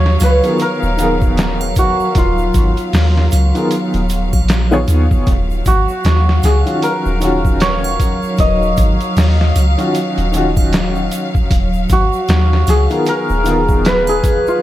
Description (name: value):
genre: trip hop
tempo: 77 BPM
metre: 4/4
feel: swing 59% on 16ths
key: unclear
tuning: A4 = 440 Hz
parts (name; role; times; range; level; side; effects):
- santur; melody; 0.0-14.6 s; F4 to Eb5; -18 LUFS; equal; tape echo
- clear symphonic string section; sustained chords; 0.0-14.6 s; Gb3 to F5; -22 LUFS; equal; none
- soft 808-style bass; bass; 0.0-14.2 s; Eb1 to Eb2; -15 LUFS; equal; none
- trip hop sampler-style drum kit; drums; 0.1-14.5 s; hi-hat, kick drum, snare drum; -17 LUFS; equal; none
- triangle and egg shaker; percussion; 0.2-14.6 s; none; -32 LUFS; right 9 dB; none
- warm upright piano; accompaniment; 0.4-14.6 s; Eb3 to F5; -20 LUFS; left 1 dB; tremolo, tape echo
room: little or no reverb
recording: none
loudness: -12 LUFS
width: side -14 dB against mid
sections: 0.0-14.6 A section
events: none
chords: 0.0 Db13/Eb; 5.3 Ebm9; 11.5 Db13/Eb (rootless)